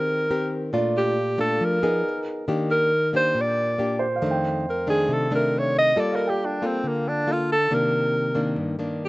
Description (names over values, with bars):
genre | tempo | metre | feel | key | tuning
bossa nova | 138 BPM | 4/4 | straight | Bb major | A4 = 440 Hz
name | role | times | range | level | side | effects
breathy alto saxophone | melody | 0.0-9.1 s | Bb3 to Eb5 | -22 LUFS | equal | none
nylon-string guitar | accompaniment | 0.0-9.1 s | F2 to Bb4 | -25 LUFS | left 1 dB | none
warm concert grand piano | accompaniment | 0.0-7.7 s | Bb4 to G5 | -30 LUFS | right 3 dB | slapback echo
room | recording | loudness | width
light reverb | recorded outdoors, with no room sound, nothing above 8.0 kHz | -20 LUFS | side -20 dB against mid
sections
0.0-9.1 A section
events
alto saxophone solo 0.0-9.1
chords
0.0 Abmaj9 (rootless); 0.7 Bbmaj7; 2.0 Abmadd9/Cb; 2.5 Ebmaj7; 4.2 F13; 6.0 Gm9; 7.7 Cm9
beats
0.30 | 0.73 1.17 1.60 2.04 | 2.47 2.91 3.34 3.78 | 4.21 4.65 5.08 5.52 | 5.96 6.39 6.83 7.26 | 7.70 8.13 8.57 9.00